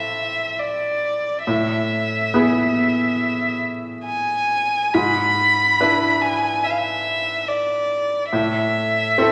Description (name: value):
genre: classical, romantic duo for violin and grand piano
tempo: 70 BPM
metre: 4/4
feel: rubato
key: unclear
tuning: A4 = 440 Hz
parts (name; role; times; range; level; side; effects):
- warm violin; melody; 0.0-9.3 s; D5 to B5; -22 LUFS; equal; none
- bright grand piano; accompaniment; 0.0-9.3 s; G#2 to B4; -24 LUFS; equal; none
room: wet recital hall reverb, RT60 1.8 s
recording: vinyl crackle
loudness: -20 LUFS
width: mono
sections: 0.0-9.3 A section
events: none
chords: 0.0 Am; 1.5 E/A; 4.9 E7/G#; 8.3 Am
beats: 0.59 | 1.47 2.33 3.20 4.07 | 4.93 5.79 6.64 7.48 | 8.33 9.18